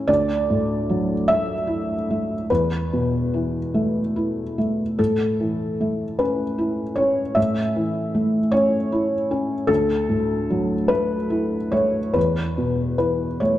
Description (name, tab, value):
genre	neoclassical minimalist piano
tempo	47-52 BPM (dotted quarters)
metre	6/8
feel	rubato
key	A major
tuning	A4 = 438 Hz
part	felt-muted upright piano	solo	0.0-13.6 s	D2 to E5	-19 LUFS	equal	none
room	moderate concert hall reverb, RT60 2.0 s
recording	dark, warm production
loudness	-19 LUFS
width	side -13 dB against mid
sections	0.0-13.6 A section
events	none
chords	0.1 Dadd9; 2.5 Esus4; 5.0 A; 9.7 Dadd9; 12.2 Esus4